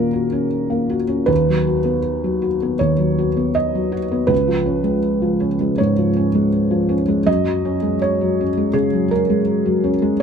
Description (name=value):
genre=neoclassical minimalist piano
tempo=81 BPM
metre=4/4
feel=rubato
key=F# major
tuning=A4 = 441 Hz
part: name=felt-muted upright piano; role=solo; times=0.0-10.2 s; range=C#2 to D#5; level=-16 LUFS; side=equal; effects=none
room=light reverb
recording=none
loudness=-16 LUFS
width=side -7 dB against mid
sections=0.0-10.2 A section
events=none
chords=0.0 D#m7; 1.3 B/D#; 4.3 C#; 7.3 F#add9